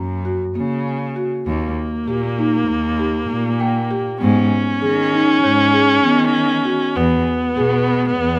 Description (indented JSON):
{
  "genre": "contemporary instrumental, chamber music in an uneven meter",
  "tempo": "197 BPM (eighths)",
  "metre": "9/8",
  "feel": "straight",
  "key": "G# minor",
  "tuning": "A4 = 440 Hz",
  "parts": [
    { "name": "marimba with soft mallets", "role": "arpeggios", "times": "0.0-8.3 s", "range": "A#3 to G#4", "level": "-22 LUFS", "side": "equal", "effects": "none" },
    { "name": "dark cello", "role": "bass", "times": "0.0-8.4 s", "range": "D#2 to D#3", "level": "-24 LUFS", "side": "equal", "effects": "none" },
    { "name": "worn celesta", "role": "texture", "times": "0.0-6.6 s", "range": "C#5 to A#5", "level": "-32 LUFS", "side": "equal", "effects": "none" },
    { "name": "dark viola", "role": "second line", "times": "1.5-8.4 s", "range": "A#3 to C#4", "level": "-21 LUFS", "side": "equal", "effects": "none" }
  ],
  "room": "light reverb",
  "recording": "none",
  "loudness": "-18 LUFS",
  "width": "mono",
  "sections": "0.0-8.4 A section",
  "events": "none",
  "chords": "0.0 F#; 1.5 D#; 4.2 G#m; 7.0 E"
}